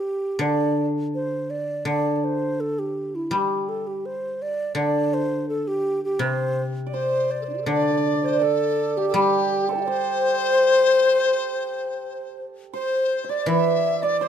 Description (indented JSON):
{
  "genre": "chinese traditional, Chinese chamber ensemble",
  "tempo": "83 BPM",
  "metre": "2/4",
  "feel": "rubato",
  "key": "C gong mode",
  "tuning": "A4 = 441 Hz",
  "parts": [
    { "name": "xiao", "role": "melody", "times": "0.0-14.3 s", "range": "E4 to C6", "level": "-25 LUFS", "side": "right 1 dB", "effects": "none" },
    { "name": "guzheng", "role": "accompaniment", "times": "0.4-14.3 s", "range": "C3 to G3", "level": "-24 LUFS", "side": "left 1 dB", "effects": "none" },
    { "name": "hammered dulcimer", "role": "second line", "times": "6.9-14.3 s", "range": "G4 to E5", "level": "-27 LUFS", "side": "right 8 dB", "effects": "none" },
    { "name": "mellow large dizi", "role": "second line", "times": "6.9-14.3 s", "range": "D4 to E5", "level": "-24 LUFS", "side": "left 7 dB", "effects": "none" }
  ],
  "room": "moderate recital hall reverb, RT60 1.8 s",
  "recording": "close, detailed microphones",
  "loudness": "-20 LUFS",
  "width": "side -8 dB against mid",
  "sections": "0.0-7.7 A section; 7.7-14.3 B section",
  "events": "none",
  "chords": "none"
}